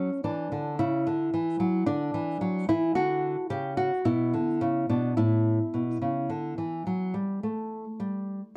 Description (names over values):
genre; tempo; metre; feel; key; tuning
classical, baroque-style dance for nylon-string guitar; 54 BPM; 3/4; rubato; unclear; A4 = 441 Hz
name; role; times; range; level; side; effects
nylon-string guitar; solo; 0.0-8.4 s; A2 to G4; -28 LUFS; equal; none
room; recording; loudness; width
light reverb; dark, warm production; -28 LUFS; mono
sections
0.0-8.6 A section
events
none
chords
0.0 N.C.; 0.8 C#madd11; 4.1 Bm; 5.2 A5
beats
0.79 | 1.87 2.96 4.07 | 5.18 6.30 7.43